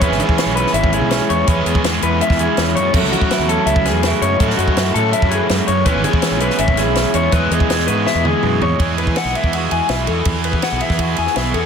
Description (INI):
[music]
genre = math rock and midwest emo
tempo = 164 BPM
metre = 4/4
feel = straight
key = E major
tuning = A4 = 441 Hz
[part]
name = electric guitar through a small old amp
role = accompaniment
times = 0.0-11.7 s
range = E2 to B4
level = -22 LUFS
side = right 10 dB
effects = spring reverb
[part]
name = electric guitar through a small old amp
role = arpeggios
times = 0.0-11.7 s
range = F#4 to G#5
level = -20 LUFS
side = left 7 dB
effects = spring reverb
[part]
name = cranked stack guitar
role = riff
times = 0.0-11.7 s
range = E3 to G#4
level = -20 LUFS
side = right 1 dB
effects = overdrive
[part]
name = fuzz fingered electric bass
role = bass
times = 0.0-11.7 s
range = G#1 to F#3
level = -21 LUFS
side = equal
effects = overdrive
[part]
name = compact cocktail drum kit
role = drums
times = 0.0-11.6 s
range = crash cymbal, hi-hat, kick drum, ride cymbal, snare drum, toms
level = -20 LUFS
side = equal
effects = soft clipping on snare
[sound]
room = light reverb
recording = dense, heavily limited modern master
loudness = -14 LUFS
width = side -7 dB against mid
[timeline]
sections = 0.0-8.8 A section; 8.8-11.7 B section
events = drum fill 8.1-8.8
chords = 0.0 C#m7; 2.9 F#m9; 5.9 C#m7; 7.3 E